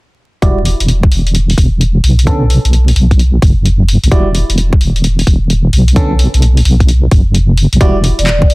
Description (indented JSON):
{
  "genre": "UK garage, two-step garage",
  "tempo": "130 BPM",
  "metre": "4/4",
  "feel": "swing 65% on 16ths",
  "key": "E dorian",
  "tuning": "A4 = 441 Hz",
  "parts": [
    { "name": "FM electric piano", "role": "stabs", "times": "0.4-8.0 s", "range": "D3 to D5", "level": "-18 LUFS", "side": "right 1 dB", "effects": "chorus, low-pass filter, digital delay" },
    { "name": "deep soft wobble bass", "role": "bass", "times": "0.4-8.5 s", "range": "E1 to B1", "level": "-10 LUFS", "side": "equal", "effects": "chorus" },
    { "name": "electronic kick drum", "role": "drums", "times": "0.4-8.5 s", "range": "none", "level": "-10 LUFS", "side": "equal", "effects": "none" },
    { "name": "punchy analog drum machine", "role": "drums", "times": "0.4-8.5 s", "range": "handclaps, hi-hat", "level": "-19 LUFS", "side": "left 1 dB", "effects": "none" },
    { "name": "vibraphone with soft mallets", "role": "melody", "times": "8.2-8.5 s", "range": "D5", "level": "-15 LUFS", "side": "equal", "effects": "none" }
  ],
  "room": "little or no reverb",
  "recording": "dense, heavily limited modern master, vinyl crackle",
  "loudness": "-8 LUFS",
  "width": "side -24 dB against mid",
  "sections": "0.4-8.5 A section",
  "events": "filter sweep on wobble bass 0.4-8.5; filter sweep on FM electric piano 0.4-8.5",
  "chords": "0.4 E5; 2.3 B5; 4.1 E5; 6.0 B5; 7.8 Em9"
}